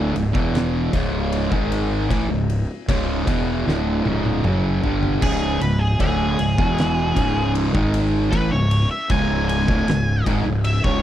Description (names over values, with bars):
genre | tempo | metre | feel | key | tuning
stoner and doom metal | 77 BPM | 4/4 | straight | C# minor | A4 = 439 Hz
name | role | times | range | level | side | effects
fuzz guitar | riff | 0.0-11.0 s | C#2 to G#3 | -20 LUFS | equal | distortion
fuzz fingered electric bass | bass | 0.0-11.0 s | C#1 to A1 | -25 LUFS | equal | overdrive
oversized low-tuned drum kit | drums | 0.2-11.0 s | crash cymbal, kick drum, ride cymbal, snare drum, toms | -25 LUFS | equal | none
octave-fuzz lead guitar | melody | 5.2-11.0 s | G#4 to G#5 | -25 LUFS | equal | distortion, tape echo
room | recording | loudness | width
little or no reverb | dry, close 1970s-style studio recording | -18 LUFS | side -11 dB against mid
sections
0.0-5.2 A section; 5.2-11.0 B section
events
drum fill 3.7-5.2; lead electric guitar solo 5.2-11.0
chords
0.0 C#m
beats
0.54 1.32 | 2.10 2.88 3.66 4.43 | 5.21 5.99 6.77 7.54 | 8.32 9.09 9.87 10.64